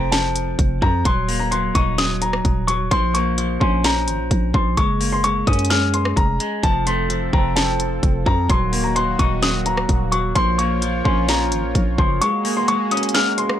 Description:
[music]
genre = hip hop, trap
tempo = 129 BPM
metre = 4/4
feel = half-time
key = Bb minor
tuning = A4 = 441 Hz
[part]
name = dark baby grand piano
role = melody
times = 0.0-13.6 s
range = A5 to F6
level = -22 LUFS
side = left 2 dB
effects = low-pass filter
[part]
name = semi-hollow electric guitar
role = accompaniment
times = 0.0-13.6 s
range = F3 to Eb4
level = -24 LUFS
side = equal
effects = spring reverb, low-pass filter
[part]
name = growling 808-style bass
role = bass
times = 0.0-12.2 s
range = Eb1 to Gb2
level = -23 LUFS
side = equal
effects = none
[part]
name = trap drum kit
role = drums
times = 0.1-13.6 s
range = hi-hat, kick drum, rim click, snare drum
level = -20 LUFS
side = equal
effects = vintage 12-bit sampler grit
[part]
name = warm analog pad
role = sustained chords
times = 6.6-13.6 s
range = Eb3 to Db5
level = -28 LUFS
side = right 2 dB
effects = chorus
[sound]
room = little or no reverb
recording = none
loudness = -16 LUFS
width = side -10 dB against mid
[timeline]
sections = 0.0-13.6 A section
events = kick muted 12.2-13.6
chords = 0.0 F; 1.1 Ebm; 2.9 Bbm; 4.8 Gbadd9; 6.6 F; 8.5 Ebm; 10.4 Bbm; 12.2 Gbadd9

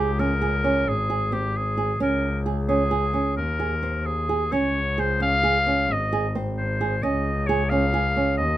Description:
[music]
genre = contemporary instrumental, chamber music in an uneven meter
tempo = 264 BPM (eighths)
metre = 11/8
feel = straight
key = unclear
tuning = A4 = 440 Hz
[part]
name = bright clarinet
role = melody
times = 0.0-8.6 s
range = G4 to F5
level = -25 LUFS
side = left 1 dB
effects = none
[part]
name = flamenco guitar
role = arpeggios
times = 0.0-8.4 s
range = C4 to Ab4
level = -26 LUFS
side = right 4 dB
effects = none
[part]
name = rich double bass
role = bass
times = 0.0-8.6 s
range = Ab1 to Eb2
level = -26 LUFS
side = left 1 dB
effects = none
[sound]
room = light reverb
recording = close, detailed microphones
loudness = -21 LUFS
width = side -13 dB against mid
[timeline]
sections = 0.0-8.6 A section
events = none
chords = 0.0 Db5; 0.9 Ab; 2.0 Db5; 3.4 Ebsus4; 4.5 Db5; 5.9 Ab; 7.0 Dbsus2

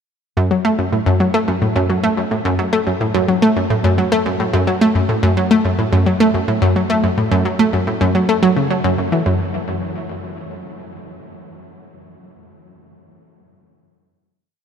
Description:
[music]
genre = ambient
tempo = 108 BPM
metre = 4/4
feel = straight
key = F# minor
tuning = A4 = 440 Hz
[part]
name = analog pluck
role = solo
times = 0.4-9.5 s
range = F#2 to A3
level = -15 LUFS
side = equal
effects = chorus, tape echo
[sound]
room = wet huge ambient reverb, RT60 7.5 s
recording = none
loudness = -14 LUFS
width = side -7 dB against mid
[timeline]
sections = 0.4-9.3 A section; 9.3-11.5 final chord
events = none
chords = none

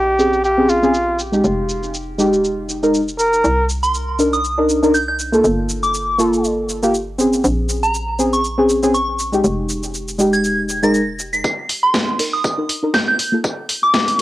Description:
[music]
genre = deep house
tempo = 120 BPM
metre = 4/4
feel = swing 55% on 16ths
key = unclear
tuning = A4 = 436 Hz
[part]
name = trumpet with bucket mute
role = melody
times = 0.0-3.7 s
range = F4 to Bb4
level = -18 LUFS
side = equal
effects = cassette tape, analog delay
[part]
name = deep mellow chord stab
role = stabs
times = 0.0-14.2 s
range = Ab3 to Bb4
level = -17 LUFS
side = equal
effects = chorus, sidechain pumping, cassette tape, analog delay
[part]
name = hollow knocking FM bass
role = bass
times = 0.0-11.4 s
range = F1 to C2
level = -24 LUFS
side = equal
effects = sidechain pumping
[part]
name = house drum kit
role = drums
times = 0.2-14.2 s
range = hi-hat, shaker, snare drum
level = -24 LUFS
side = equal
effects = low-pass filter on cymbals, cassette tape, low-pass filter on perc, low-pass filter on hats, low-pass filter on snare, low-pass filter on room
[part]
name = soft synth bell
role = melody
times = 3.8-14.2 s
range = Bb5 to C7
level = -19 LUFS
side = equal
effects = chorus, phaser, low-pass filter, cassette tape, tape echo
[part]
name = dusty soul sampler-style drum kit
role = drums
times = 11.4-14.2 s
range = hi-hat, snare drum, tambourine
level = -28 LUFS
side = equal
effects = sidechain pumping on perc, high-pass filter on perc, cassette tape, high-pass filter on snare, sidechain pumping on hats, high-pass filter on hats
[part]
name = electronic kick drum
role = drums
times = 11.4-14.1 s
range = none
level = -24 LUFS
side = equal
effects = high-pass filter on kick, cassette tape, high-pass filter on room
[sound]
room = moderate studio ambience, RT60 0.5 s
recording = home recording on cassette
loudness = -15 LUFS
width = side -15 dB against mid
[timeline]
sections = 0.0-11.4 A section; 11.4-14.2 B section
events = build-up 11.4-14.2; filter sweep on synth stab 11.4-14.2; filter sweep on synth bell 11.4-14.2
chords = 0.0 Bbm9; 1.4 Fm9; 3.4 Cm9; 5.4 Gm9; 7.4 Bbm9; 9.4 Fm9; 11.4 Bbadd11; 13.4 Gm9 (rootless)

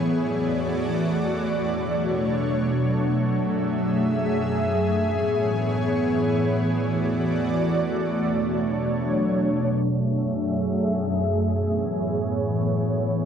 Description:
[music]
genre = hip hop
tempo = free time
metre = none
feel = none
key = F# minor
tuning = A4 = 442 Hz
[part]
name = ethereal airy pad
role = solo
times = 0.0-13.3 s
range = E2 to E5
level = -21 LUFS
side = equal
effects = ensemble chorus, built-in reverb
[sound]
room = moderate huge ambient reverb, RT60 8.1 s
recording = low-pass filter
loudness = -21 LUFS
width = side -8 dB against mid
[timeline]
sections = 0.0-9.8 A section; 9.8-13.3 B section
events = filter sweep 9.8-13.3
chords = 0.1 E7sus4; 1.7 Bm7; 3.3 F#m7; 5.0 Amaj7; 6.6 E7sus4; 8.2 Bm7; 9.8 F#m7; 11.5 Amaj7

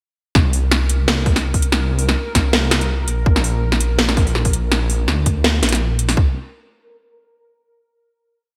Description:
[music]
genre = half-time drum and bass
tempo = 165 BPM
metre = 4/4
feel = swing 55% on 16ths, half-time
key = unclear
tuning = A4 = 440 Hz
[part]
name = drum and bass drum kit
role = drums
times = 0.3-6.2 s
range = hi-hat, snare drum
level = -21 LUFS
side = equal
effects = gated reverb
[part]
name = dark detuned saw bass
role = bass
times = 0.4-6.3 s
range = Bb1 to D2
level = -21 LUFS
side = equal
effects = none
[part]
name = electronic kick drum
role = drums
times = 0.4-6.3 s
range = none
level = -19 LUFS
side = equal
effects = none
[part]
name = pulsing gated texture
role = texture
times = 0.7-6.2 s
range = Bb4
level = -35 LUFS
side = equal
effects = chorus, built-in reverb
[sound]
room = light reverb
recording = bright 1980s-style digital production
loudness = -17 LUFS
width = mono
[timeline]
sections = 0.4-6.2 drop; 6.2-7.6 final note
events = drop 0.4-6.2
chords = 0.4 Bbsus2; 3.3 Bb; 6.2 N.C.

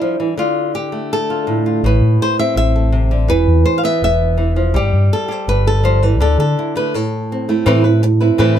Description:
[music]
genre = flamenco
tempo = 165 BPM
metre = 4/4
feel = straight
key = A minor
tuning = A4 = 441 Hz
[part]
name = flamenco guitar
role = melody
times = 0.0-8.6 s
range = A2 to F5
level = -15 LUFS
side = right 1 dB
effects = none
[part]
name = fingered electric bass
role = bass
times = 1.8-8.6 s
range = E1 to D3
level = -14 LUFS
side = equal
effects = none
[sound]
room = little or no reverb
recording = close, detailed microphones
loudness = -13 LUFS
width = side -10 dB against mid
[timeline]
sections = 0.0-7.7 A section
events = break 6.9-7.7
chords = 0.4 Dm; 1.8 Amadd9; 3.3 E5; 4.7 Gsus2; 6.2 Dsus2; 6.9 Am; 7.7 Amadd9

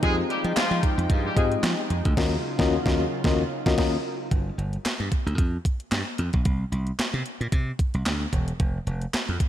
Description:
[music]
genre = early-eighties boogie funk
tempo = 112 BPM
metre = 4/4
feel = swing 56% on 16ths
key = G phrygian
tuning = A4 = 437 Hz
[part]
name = clear horn section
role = second line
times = 0.0-1.5 s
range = F3 to Ab4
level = -30 LUFS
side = left 1 dB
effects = ping-pong delay
[part]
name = FM electric piano with tremolo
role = accompaniment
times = 0.0-4.0 s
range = C4 to G5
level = -27 LUFS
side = left 5 dB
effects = none
[part]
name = warm analog pad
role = sustained chords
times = 0.0-4.3 s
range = Db3 to G5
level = -32 LUFS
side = right 1 dB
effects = chorus
[part]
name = slap bass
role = bass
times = 0.0-9.4 s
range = E1 to F3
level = -27 LUFS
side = equal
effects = none
[part]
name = clean 12-bit digital drum machine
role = drums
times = 0.0-9.5 s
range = crash cymbal, handclaps, hi-hat, kick drum, snare drum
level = -25 LUFS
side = equal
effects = overdrive
[part]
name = group handclap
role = percussion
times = 0.6-9.3 s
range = none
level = -39 LUFS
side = right 4 dB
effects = none
[sound]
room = light reverb, digital ambience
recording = none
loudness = -22 LUFS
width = side -11 dB against mid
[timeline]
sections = 0.0-4.3 A section; 4.3-9.5 B section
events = band accent 2.2-4.3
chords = 0.0 Fm9; 2.2 Ebm9; 4.3 G5; 6.5 N.C.

